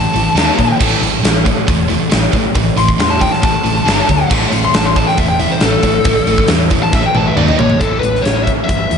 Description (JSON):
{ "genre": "hard rock", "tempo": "137 BPM", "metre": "4/4", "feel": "straight", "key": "unclear", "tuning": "A4 = 440 Hz", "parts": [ { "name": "biting lead guitar", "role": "melody", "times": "0.0-9.0 s", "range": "A4 to C6", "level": "-16 LUFS", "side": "left 2 dB", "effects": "overdrive, slapback echo, tape echo" }, { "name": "high-gain distorted guitar", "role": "riff", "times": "0.0-7.8 s", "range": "G2 to D#4", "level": "-19 LUFS", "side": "right 10 dB", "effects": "distortion" }, { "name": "sludgy distorted guitar", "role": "riff", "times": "0.0-9.0 s", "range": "G2 to D#4", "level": "-20 LUFS", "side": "left 8 dB", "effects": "overdrive" }, { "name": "hollow-body short-scale fingered electric bass", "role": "bass", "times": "0.0-9.0 s", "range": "E1 to A#2", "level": "-19 LUFS", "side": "equal", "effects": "none" }, { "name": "huge arena drum kit", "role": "drums", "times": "0.2-9.0 s", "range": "crash cymbal, hi-hat, kick drum, snare drum, toms", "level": "-15 LUFS", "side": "equal", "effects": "none" } ], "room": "moderate lush hall reverb, RT60 2.0 s", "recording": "big arena sound, nothing above 10.5 kHz", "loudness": "-11 LUFS", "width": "side -6 dB against mid", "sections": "0.0-7.8 A section; 7.8-9.0 B section", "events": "lead electric guitar solo 0.0-7.8; drum fill 6.9-7.8", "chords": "0.4 D#5; 0.8 A5; 3.9 G5; 4.3 A5; 7.4 D#5; 7.8 A5" }